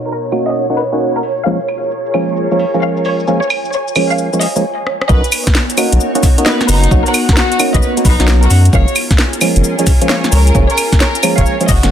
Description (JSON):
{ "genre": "UK garage, two-step garage", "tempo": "132 BPM", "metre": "4/4", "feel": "swing 65% on 16ths", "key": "B lydian", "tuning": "A4 = 436 Hz", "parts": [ { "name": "soft string machine", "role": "sustained chords", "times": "0.0-11.9 s", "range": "B2 to C#5", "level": "-25 LUFS", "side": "equal", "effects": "ensemble chorus, sidechain pumping" }, { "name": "garage drum kit", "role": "drums", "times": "0.0-11.9 s", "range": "cabasa, claves, hi-hat, rim click, snare drum", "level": "-17 LUFS", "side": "equal", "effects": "soft clipping on snare" }, { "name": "ethereal airy pad", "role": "texture", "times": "0.0-11.9 s", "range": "B3 to G#5", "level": "-22 LUFS", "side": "right 2 dB", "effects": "ensemble chorus, built-in reverb, sidechain pumping" }, { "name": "rich chamber violin section", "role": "melody", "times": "0.1-11.9 s", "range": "D#4 to E#5", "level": "-19 LUFS", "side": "left 1 dB", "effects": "tape echo" }, { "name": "percussive organ stab", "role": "stabs", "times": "0.3-11.9 s", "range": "E#3 to F#4", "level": "-17 LUFS", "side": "right 1 dB", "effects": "analog chorus, tape echo" }, { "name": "saturated sub bass", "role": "bass", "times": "5.1-11.9 s", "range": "F#1 to F#2", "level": "-10 LUFS", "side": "equal", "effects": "none" }, { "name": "electronic kick drum", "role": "drums", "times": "5.1-11.8 s", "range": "none", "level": "-12 LUFS", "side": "equal", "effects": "none" } ], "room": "light reverb, digital ambience", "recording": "dense, heavily limited modern master, low-pass filter", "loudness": "-10 LUFS", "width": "side -9 dB against mid", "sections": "0.0-5.1 A section; 5.1-11.9 B section", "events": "filter sweep on string machine 0.0-5.1; filter sweep 0.0-5.1; stop 4.6-5.1; drum fill 4.9; drop 5.1-11.9", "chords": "0.0 Bmaj9; 1.2 C#6/E#; 5.1 Bmaj9; 8.5 F#maj9", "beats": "0.09 0.55 1.00 | 1.46 1.91 2.37 2.82 | 3.28 3.73 4.18 4.64 | 5.09 5.55 6.00 6.46 | 6.91 7.37 7.82 8.28 | 8.73 9.19 9.64 10.09 | 10.55 11.00 11.46" }